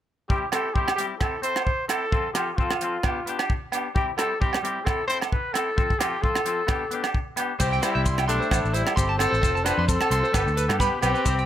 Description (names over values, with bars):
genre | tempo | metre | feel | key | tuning
highlife guitar band | 131 BPM | 4/4 | swing 55% on 16ths | C major | A4 = 440 Hz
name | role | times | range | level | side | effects
warm trumpet | melody | 0.3-11.5 s | D4 to C5 | -27 LUFS | equal | none
clean electric guitar | accompaniment | 0.3-11.4 s | F3 to A4 | -30 LUFS | left 5 dB | none
tight funk drum kit | drums | 0.3-11.4 s | crash cymbal, hi-hat, kick drum, rim click | -26 LUFS | equal | none
agogo bells | percussion | 0.5-11.2 s | none | -31 LUFS | right 10 dB | none
bright alto saxophone | second line | 7.6-11.5 s | G3 to D4 | -30 LUFS | left 5 dB | none
electric guitar at the edge of break-up | arpeggios | 7.6-11.4 s | B4 to C6 | -28 LUFS | right 4 dB | spring reverb, tape echo
fingered electric bass | bass | 7.6-11.4 s | F1 to G2 | -26 LUFS | equal | none
maracas | percussion | 7.6-11.4 s | none | -36 LUFS | left 7 dB | none
room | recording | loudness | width
small room ambience | none | -22 LUFS | side -11 dB against mid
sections
0.3-7.6 A section; 7.6-11.5 B section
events
none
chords
0.3 C; 1.2 Am; 2.1 F; 3.0 G; 4.0 C; 4.9 Am; 5.8 F; 6.7 G; 7.6 C; 8.5 Am; 9.4 F; 10.3 G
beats
| 0.30 0.76 1.21 1.67 | 2.13 2.58 3.04 3.50 | 3.95 4.41 4.87 5.32 | 5.78 6.23 6.69 7.15 | 7.60 8.06 8.52 8.97 | 9.43 9.89 10.34 10.80 | 11.26